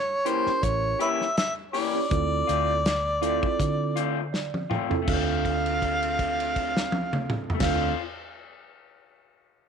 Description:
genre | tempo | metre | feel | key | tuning
straight-eighth soul blues | 81 BPM | 4/4 | swing 55% on 16ths | D minor | A4 = 440 Hz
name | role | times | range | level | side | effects
mellow harmonica | melody | 0.0-7.9 s | B4 to F5 | -27 LUFS | equal | none
mellow tine electric piano | accompaniment | 0.3-7.9 s | C4 to G5 | -30 LUFS | right 14 dB | none
electric guitar through a small old amp | stabs | 0.3-8.0 s | E3 to G4 | -32 LUFS | left 13 dB | none
warm soul drum kit | drums | 0.3-7.8 s | crash cymbal, hi-hat, kick drum, snare drum, toms | -30 LUFS | equal | none
vintage muted fingered electric bass | bass | 0.5-7.9 s | A1 to D3 | -31 LUFS | equal | none
room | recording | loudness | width
light reverb | 1960s-style stereo with parts hard left and right | -23 LUFS | side -6 dB against mid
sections
0.0-5.1 A section; 5.1-8.0 B section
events
tine electric piano fill 4.0-5.1; drum fill 4.3-5.1; held note 5.1-7.6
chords
0.0 A7b9; 2.1 Dm7

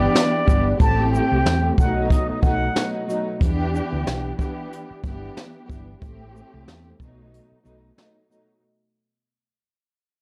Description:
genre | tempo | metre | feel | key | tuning
hip hop, boom-bap hip-hop | 92 BPM | 4/4 | swing 57% on 16ths | E minor | A4 = 441 Hz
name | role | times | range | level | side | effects
trumpet with plunger mute | melody | 0.0-2.9 s | D5 to A5 | -27 LUFS | equal | none
warm studio string section | accompaniment | 0.0-8.6 s | A2 to G4 | -27 LUFS | equal | cassette tape
hollow-body short-scale fingered electric bass | bass | 0.0-7.9 s | G1 to E2 | -27 LUFS | equal | none
jazz brush drum kit | drums | 0.2-8.5 s | hi-hat, kick drum, shaker, snare drum | -24 LUFS | equal | none
room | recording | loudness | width
small room ambience | dry, gritty hardware recording | -21 LUFS | mono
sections
0.0-8.6 A section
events
fade-out 0.0-8.6; break 7.3-8.6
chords
0.0 Em7; 0.8 Am7; 1.8 B7; 3.4 Em7; 6.0 Am7; 7.0 B7

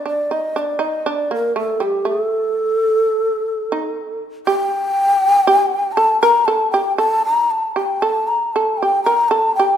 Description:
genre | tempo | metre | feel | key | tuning
japanese traditional, Japanese chamber music | 57-63 BPM | 2/4 | rubato | unclear | A4 = 441 Hz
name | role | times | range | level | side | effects
breathy long shakuhachi | melody | 0.0-9.8 s | G4 to Bb5 | -16 LUFS | left 1 dB | none
shamisen | second line | 0.0-9.8 s | G3 to Bb4 | -20 LUFS | right 4 dB | none
room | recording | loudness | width
moderate scoring stage reverb, RT60 1.9 s | minimal, uncompressed stereo recording | -15 LUFS | side -9 dB against mid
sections
0.1-9.8 A section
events
none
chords
none

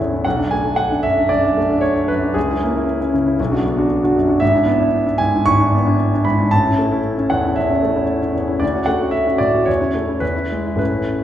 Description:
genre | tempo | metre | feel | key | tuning
classical, romantic character piece for solo piano | 114 BPM | 4/4 | rubato | A major | A4 = 439 Hz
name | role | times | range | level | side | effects
clear grand piano | solo | 0.0-11.2 s | G#1 to C#6 | -15 LUFS | equal | none
room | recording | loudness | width
wet recital hall reverb, RT60 1.7 s | heard from further back in the room, nothing above 10.7 kHz | -15 LUFS | side -11 dB against mid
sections
0.0-11.2 A section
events
none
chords
0.2 Bm7; 2.4 A#dim/C#; 3.4 Bm; 4.4 E7/G#; 6.5 A; 8.6 Dmaj7; 9.7 A/E; 10.2 E

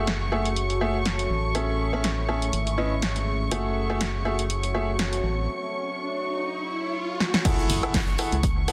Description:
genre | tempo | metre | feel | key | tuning
piano house | 122 BPM | 4/4 | swing 55% on 16ths | F# minor | A4 = 440 Hz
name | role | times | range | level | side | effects
dark chamber string section | sustained chords | 0.0-8.7 s | C#6 | -35 LUFS | equal | sidechain pumping
bright upright piano | riff | 0.0-8.7 s | A3 to F#5 | -31 LUFS | equal | sidechain pumping, low-pass filter, dub echo
organ-like FM bass | bass | 0.0-8.7 s | F#1 to C#2 | -30 LUFS | equal | sidechain pumping
deep dark ambient pad | texture | 0.2-5.5 s | A3 to B5 | -36 LUFS | equal | chorus, built-in reverb, sidechain pumping
punchy analog drum machine | drums | 0.1-8.7 s | crash cymbal, hi-hat, snare drum, woodblock | -31 LUFS | equal | low-pass filter on hats, low-pass filter on snare, low-pass filter on cymbals, low-pass filter on perc, low-pass filter on room
riser and impact | sound effects | 5.3-8.7 s | none | -36 LUFS | equal | none
electronic kick drum | drums | 7.5-8.5 s | none | -27 LUFS | equal | none
gated 80s drum kit | drums | 7.5-8.7 s | hi-hat, snare drum | -43 LUFS | equal | none
room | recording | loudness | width
moderate lush hall reverb, RT60 1.8 s, studio reverb | dense, heavily limited modern master | -26 LUFS | mono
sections
0.0-7.5 A section; 7.5-8.7 B section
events
filter sweep on drum 0.0-7.5; riser 5.3-7.5; drum fill 7.2; drop 7.5-8.7; impact 7.5-8.7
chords
0.0 F#m9; 1.3 Amaj7; 2.5 C#m9/G#; 3.5 F#m9; 5.2 A; 6.5 N.C.; 7.5 F#m9

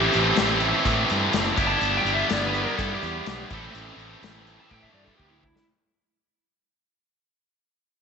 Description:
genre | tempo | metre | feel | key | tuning
classic rock | 125 BPM | 4/4 | straight | unclear | A4 = 441 Hz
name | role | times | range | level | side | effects
overdriven slide guitar | melody | 0.0-5.7 s | E4 to A5 | -29 LUFS | right 2 dB | tape echo
tight distorted guitar | riff | 0.0-5.4 s | A2 to A4 | -23 LUFS | equal | distortion
fuzz fingered electric bass | bass | 0.0-5.5 s | F#1 to A2 | -30 LUFS | right 1 dB | overdrive
big rock drum kit | drums | 0.1-5.7 s | hi-hat, kick drum, snare drum, tambourine | -30 LUFS | left 3 dB | none
room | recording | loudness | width
moderate echo chamber reverb, RT60 1.4 s, small room ambience | 1960s-style stereo, nothing above 8.0 kHz | -20 LUFS | side -6 dB against mid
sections
0.0-5.7 A section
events
fade-out 0.0-5.7; drum fill 4.7-5.7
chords
0.0 Am; 1.6 Em/G; 3.5 Am

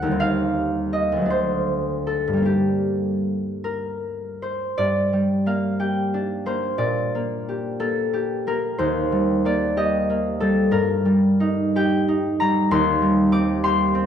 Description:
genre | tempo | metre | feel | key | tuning
classical, solo harp piece | 50-65 BPM (dotted quarters) | 6/8 | rubato | G minor | A4 = 440 Hz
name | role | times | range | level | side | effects
concert harp | solo | 0.0-14.1 s | D2 to D6 | -19 LUFS | equal | none
room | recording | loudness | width
moderate recital hall reverb, RT60 1.5 s | dark, warm production | -19 LUFS | side -8 dB against mid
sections
0.0-4.8 A section; 4.8-14.1 B section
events
none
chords
0.2 Cm/Eb; 1.3 D7; 2.5 Gm; 6.8 Gm/Bb; 8.8 Eb; 10.7 Eb/G; 12.7 Cm/Eb

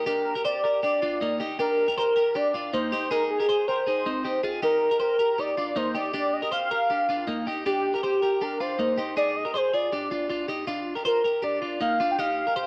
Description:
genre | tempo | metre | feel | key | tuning
indie pop | 159 BPM | 4/4 | straight | unclear | A4 = 439 Hz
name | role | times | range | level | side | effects
warm velvety synth lead | melody | 0.0-12.7 s | G4 to G5 | -27 LUFS | equal | chorus, slapback echo
twelve-string electric guitar | arpeggios | 0.0-12.7 s | Bb3 to C5 | -31 LUFS | equal | spring reverb
room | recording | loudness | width
little or no reverb | dry, close 1970s-style studio recording | -26 LUFS | mono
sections
0.0-10.7 A section; 10.7-12.7 B section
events
none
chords
0.0 Bb6; 2.9 Ab; 4.6 Bb6; 9.0 Ab; 9.9 Dmadd11; 10.7 Bb

